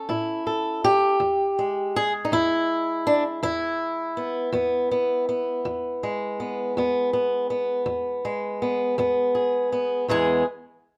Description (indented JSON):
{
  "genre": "acoustic country blues, solo or duo",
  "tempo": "54 BPM (dotted quarters)",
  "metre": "12/8",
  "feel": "straight",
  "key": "E major",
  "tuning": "A4 = 440 Hz",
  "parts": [
    { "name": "fingerpicked swing-style acoustic guitar", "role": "solo", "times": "0.0-10.4 s", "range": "E2 to A4", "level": "-24 LUFS", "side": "equal", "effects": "none" }
  ],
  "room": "moderate studio reverb, RT60 0.9 s",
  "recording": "none",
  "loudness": "-24 LUFS",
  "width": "mono",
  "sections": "0.0-10.1 A section",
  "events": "none",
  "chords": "0.0 A; 1.2 E",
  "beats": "0.09 | 1.20 2.31 3.42 4.54 | 5.65 6.76 7.87 8.98 | 10.09"
}